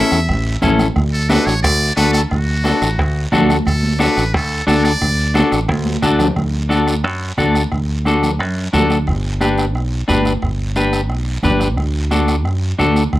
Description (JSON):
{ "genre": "latin, cumbia", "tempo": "178 BPM", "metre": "4/4", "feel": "straight", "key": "D major", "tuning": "A4 = 440 Hz", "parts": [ { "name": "trumpet with metal mute", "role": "melody", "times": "0.0-5.5 s", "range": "F#4 to E5", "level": "-20 LUFS", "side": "equal", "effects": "none" }, { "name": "clean electric guitar", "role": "accompaniment", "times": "0.0-13.0 s", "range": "C#4 to B4", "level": "-17 LUFS", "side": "left 2 dB", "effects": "none" }, { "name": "fingered electric bass", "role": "bass", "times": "0.1-13.2 s", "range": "G1 to F#2", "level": "-18 LUFS", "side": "equal", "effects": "none" }, { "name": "bombo", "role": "percussion", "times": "0.1-13.2 s", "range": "none", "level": "-24 LUFS", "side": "right 1 dB", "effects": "none" }, { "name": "guiro", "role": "percussion", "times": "0.1-13.2 s", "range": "none", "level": "-30 LUFS", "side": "right 2 dB", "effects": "none" }, { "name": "congas", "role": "percussion", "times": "0.3-13.2 s", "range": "none", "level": "-21 LUFS", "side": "right 1 dB", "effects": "none" } ], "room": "light reverb", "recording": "rough home demo mix", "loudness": "-14 LUFS", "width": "side -15 dB against mid", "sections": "0.0-6.4 A section; 6.4-13.2 B section", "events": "drum fill 5.7-6.4", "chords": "0.0 A; 1.0 D; 9.1 G; 11.8 D" }